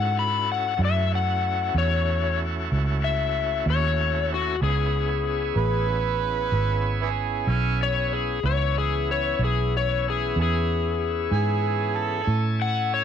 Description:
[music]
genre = blues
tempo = 63 BPM (dotted quarters)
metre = 12/8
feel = straight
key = C# minor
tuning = A4 = 440 Hz
[part]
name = overdriven slide guitar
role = melody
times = 0.0-13.0 s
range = F#4 to B5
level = -25 LUFS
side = left 11 dB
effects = none
[part]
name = bright tonewheel organ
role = sustained chords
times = 0.0-13.0 s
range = E3 to G#5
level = -30 LUFS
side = right 2 dB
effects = slow rotary speaker, overdrive
[part]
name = vintage muted fingered electric bass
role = bass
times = 0.0-13.0 s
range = G#1 to A2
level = -25 LUFS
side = right 2 dB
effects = none
[part]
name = overdriven harmonica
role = second line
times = 5.6-12.4 s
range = B3 to B4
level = -27 LUFS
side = right 12 dB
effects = none
[sound]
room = light reverb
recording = 1960s-style stereo with parts hard left and right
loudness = -22 LUFS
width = side -8 dB against mid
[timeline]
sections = 0.0-13.0 A section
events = none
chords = 0.0 F#m7; 4.6 C#m7; 12.3 Amaj7

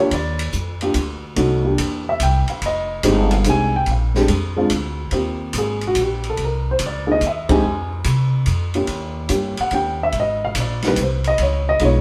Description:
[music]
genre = jazz piano trio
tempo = 144 BPM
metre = 3/4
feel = swing 67% on 8ths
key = Eb major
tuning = A4 = 441 Hz
[part]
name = dark baby grand piano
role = melody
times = 0.0-12.0 s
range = Ab3 to Ab5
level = -22 LUFS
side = equal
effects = none
[part]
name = upright bass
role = bass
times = 0.0-12.0 s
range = F1 to C3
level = -24 LUFS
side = equal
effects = none
[part]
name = open jazz drum kit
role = drums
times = 0.1-11.9 s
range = hi-hat, kick drum, ride cymbal, snare drum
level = -29 LUFS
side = equal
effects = none
[sound]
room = moderate stone room reverb, RT60 1.1 s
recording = band playing live in one room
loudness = -20 LUFS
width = mono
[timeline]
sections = 0.0-5.1 A section; 5.1-12.0 B section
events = band accent 7.4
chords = 0.1 Ebmaj7sus2; 1.4 C7; 2.6 Fm9; 3.9 Bb; 5.1 Eb69; 6.4 C7alt; 7.6 F5; 8.9 Eb7b9; 10.1 Abadd9; 11.4 Db9

